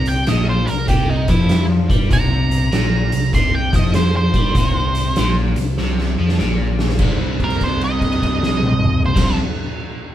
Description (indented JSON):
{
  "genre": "blues rock power trio and southern rock",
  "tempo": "98 BPM",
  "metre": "4/4",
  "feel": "swing 66% on 8ths",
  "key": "unclear",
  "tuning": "A4 = 439 Hz",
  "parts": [
    { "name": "octave-fuzz lead guitar", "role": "melody", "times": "0.0-9.4 s", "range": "Eb4 to C6", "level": "-22 LUFS", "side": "right 2 dB", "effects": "distortion" },
    { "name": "crunchy overdriven guitar", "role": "riff", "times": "0.0-9.4 s", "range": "Bb2 to C4", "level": "-21 LUFS", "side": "left 1 dB", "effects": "none" },
    { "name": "picked electric bass", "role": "bass", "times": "0.0-9.4 s", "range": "Bb1 to G2", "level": "-21 LUFS", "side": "equal", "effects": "none" },
    { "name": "oversized low-tuned drum kit", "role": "drums", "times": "0.1-9.3 s", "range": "crash cymbal, hi-hat, kick drum, snare drum, toms", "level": "-18 LUFS", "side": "equal", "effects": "none" }
  ],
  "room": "light reverb",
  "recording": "band playing live in one room",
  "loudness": "-15 LUFS",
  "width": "side -12 dB against mid",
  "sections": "0.0-7.0 A section; 7.0-9.5 B section",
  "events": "drum fill 5.8-7.0; held note 7.0-9.1",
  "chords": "0.0 N.C.; 7.0 C5",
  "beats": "0.28 0.89 1.50 | 2.11 2.72 3.34 3.95 | 4.56 5.17 5.78 6.39 | 7.00 7.62 8.23 8.84"
}